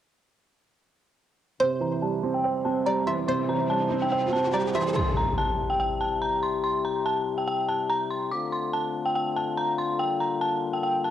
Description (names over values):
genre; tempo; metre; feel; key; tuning
hip hop; 143 BPM; 4/4; half-time; unclear; A4 = 440 Hz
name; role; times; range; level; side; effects
dark detuned synth bell; melody; 1.6-11.1 s; G5 to D6; -27 LUFS; equal; chorus, low-pass filter, cassette tape, analog delay
string-like resonator pluck; second line; 1.6-4.9 s; C5 to E5; -29 LUFS; equal; chorus, phaser, cassette tape, analog delay
dark concert grand piano; accompaniment; 1.6-5.0 s; C3 to C5; -27 LUFS; right 7 dB; low-pass filter, cassette tape
mellow French horn section; sustained chords; 1.6-11.1 s; C3 to C5; -30 LUFS; left 7 dB; low-pass filter, cassette tape
riser and impact; sound effects; 2.8-6.6 s; none; -32 LUFS; equal; none
room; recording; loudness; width
moderate spring reverb, RT60 2.7 s; home recording on cassette; -24 LUFS; side -11 dB against mid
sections
1.6-5.0 A section; 5.0-11.1 B section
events
filter sweep 1.6-5.0; riser 2.8-5.0; impact 5.0-6.6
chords
1.6 C; 8.3 Dm7; 10.0 Gm7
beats
| 1.60 2.02 2.44 2.86 | 3.28 3.70 4.12 4.54 | 4.96 5.38 5.80 6.22 | 6.64 7.06 7.47 7.89 | 8.31 8.73 9.15 9.57 | 9.99 10.41 10.83